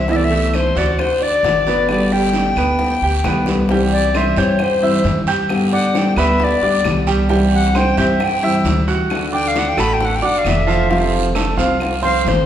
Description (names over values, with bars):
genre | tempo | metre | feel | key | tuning
latin, Cuban son and guajira | 133 BPM | 4/4 | straight | G major | A4 = 439 Hz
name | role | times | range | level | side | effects
bright reedy alto recorder | melody | 0.0-12.5 s | C5 to B5 | -19 LUFS | left 3 dB | none
nylon-string guitar | accompaniment | 0.0-12.5 s | B2 to G4 | -20 LUFS | left 2 dB | none
upright bass | bass | 0.0-12.5 s | F1 to G2 | -22 LUFS | equal | none
clear baby grand piano | arpeggios | 0.1-12.4 s | E3 to G6 | -20 LUFS | right 3 dB | none
bongos | percussion | 0.1-12.5 s | none | -25 LUFS | left 2 dB | none
guiro | percussion | 0.1-12.5 s | none | -29 LUFS | right 5 dB | none
claves | percussion | 0.5-12.0 s | none | -32 LUFS | left 2 dB | none
room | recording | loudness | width
wet recital hall reverb, RT60 1.4 s | recorded in a church or concert hall | -14 LUFS | side -10 dB against mid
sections
0.0-3.7 A section; 3.7-12.5 B section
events
drum fill 3.5; recorder solo 3.7-12.5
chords
0.1 Amadd9/C; 1.0 D; 1.9 G; 3.7 C; 5.5 G; 7.3 C; 9.1 D; 10.9 F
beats
| 0.09 0.54 0.99 1.44 | 1.89 2.34 2.79 3.24 | 3.69 4.14 4.59 5.04 | 5.50 5.95 6.40 6.85 | 7.30 7.75 8.20 8.65 | 9.10 9.55 10.00 10.45 | 10.90 11.35 11.80 12.25